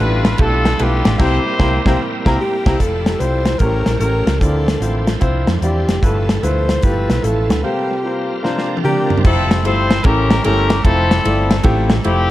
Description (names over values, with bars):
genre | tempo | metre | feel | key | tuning
uptempo gospel | 149 BPM | 4/4 | swing 65% on 8ths | F major | A4 = 437 Hz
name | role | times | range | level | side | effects
clear horn section | melody | 0.0-2.0, 8.8-12.3 s | Bb3 to C5 | -20 LUFS | left 2 dB | dub echo
clear baby grand piano | accompaniment | 0.0-12.3 s | G2 to Bb5 | -21 LUFS | left 1 dB | dub echo
bright tonewheel organ | sustained chords | 0.0-9.2 s | B2 to E5 | -27 LUFS | right 4 dB | slow rotary speaker, chorus vibrato
hollow-body short-scale fingered electric bass | bass | 0.0-12.3 s | F1 to F2 | -18 LUFS | equal | none
modern studio drum kit | drums | 0.2-12.2 s | crash cymbal, hi-hat, kick drum, ride cymbal, snare drum, toms | -18 LUFS | equal | dub echo
breathy alto saxophone | melody | 2.4-9.2 s | G4 to C5 | -22 LUFS | left 1 dB | dub echo
room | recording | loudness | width
light reverb | echo-heavy mix | -13 LUFS | side -15 dB against mid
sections
0.0-2.8 A section; 2.8-9.2 B section; 9.2-12.3 A section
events
band accent 1.2-2.8; break 7.6-9.2; drum fill 8.4-9.2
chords
0.0 G13; 1.2 C7; 2.8 Fmaj9; 3.6 A7b9; 4.4 Dm9; 6.0 G13; 7.6 C7sus4; 8.4 C9sus4; 9.2 Fmaj9; 10.0 A7b9; 10.8 Fmaj7